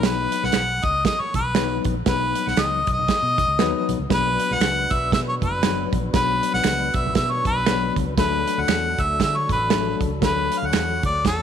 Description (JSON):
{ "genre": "uptempo 1960s-style soul", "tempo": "118 BPM", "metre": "4/4", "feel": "swing 58% on 8ths", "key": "unclear", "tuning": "A4 = 440 Hz", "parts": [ { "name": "clear harmonica", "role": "melody", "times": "0.0-11.4 s", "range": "A4 to F#5", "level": "-22 LUFS", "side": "left 1 dB", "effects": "none" }, { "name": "tine electric piano", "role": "accompaniment", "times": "0.0-11.0 s", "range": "F#3 to B4", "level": "-27 LUFS", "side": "left 14 dB", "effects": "overdrive, fast stereo tremolo" }, { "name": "vintage muted fingered electric bass", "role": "bass", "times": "0.0-11.4 s", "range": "F#1 to D3", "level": "-28 LUFS", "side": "left 1 dB", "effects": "none" }, { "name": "natural country drum kit", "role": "drums", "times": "0.0-11.4 s", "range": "hi-hat, kick drum, snare drum", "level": "-24 LUFS", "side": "right 4 dB", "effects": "none" }, { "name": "congas", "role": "percussion", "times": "0.0-11.4 s", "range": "none", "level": "-36 LUFS", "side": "right 9 dB", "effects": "none" }, { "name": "finger snaps", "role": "percussion", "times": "0.5-10.9 s", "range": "none", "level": "-33 LUFS", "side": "right 13 dB", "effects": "none" }, { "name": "mellow tonewheel organ", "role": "sustained chords", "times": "4.1-11.4 s", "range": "F#3 to C#5", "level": "-32 LUFS", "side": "left 1 dB", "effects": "slow rotary speaker, overdrive, chorus vibrato" } ], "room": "light reverb, studio reverb", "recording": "1960s-style stereo with parts hard left and right", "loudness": "-19 LUFS", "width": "side -8 dB against mid", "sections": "0.0-11.4 A section", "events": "none", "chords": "0.0 B; 4.1 Bm; 8.2 D" }